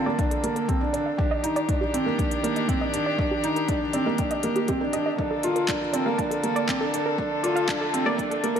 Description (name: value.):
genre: piano and strings electronica.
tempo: 120 BPM.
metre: 4/4.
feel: straight.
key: Bb major.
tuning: A4 = 443 Hz.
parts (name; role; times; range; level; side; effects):
dark string quartet; sustained chords; 0.0-8.6 s; D3 to A4; -29 LUFS; left 3 dB; sidechain pumping.
felt-muted upright piano; riff; 0.0-8.6 s; Bb3 to F4; -25 LUFS; right 1 dB; digital delay.
warbly dusty pluck; arpeggios; 0.1-8.6 s; G4 to A5; -31 LUFS; right 2 dB; chorus, sidechain pumping, digital delay.
electronic kick drum; drums; 0.2-8.3 s; none; -28 LUFS; equal; none.
organic electronic drum kit; drums; 0.2-8.6 s; handclaps, hi-hat; -33 LUFS; left 1 dB; none.
room: wet concert hall reverb, RT60 2.0 s.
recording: dark, warm production, high-pass filter.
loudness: -22 LUFS.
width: side -8 dB against mid.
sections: 0.0-8.6 A section.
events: build-up 0.0-8.6; filter sweep on synth arpeggio sound 0.0-8.6; filter sweep 0.0-8.6.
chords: 0.0 Bbmaj7; 1.2 Ebmaj7; 5.2 Bbmaj7.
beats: 0.19 0.69 | 1.19 1.69 2.19 2.69 | 3.19 3.69 4.19 4.69 | 5.19 5.69 6.19 6.69 | 7.19 7.69 8.19.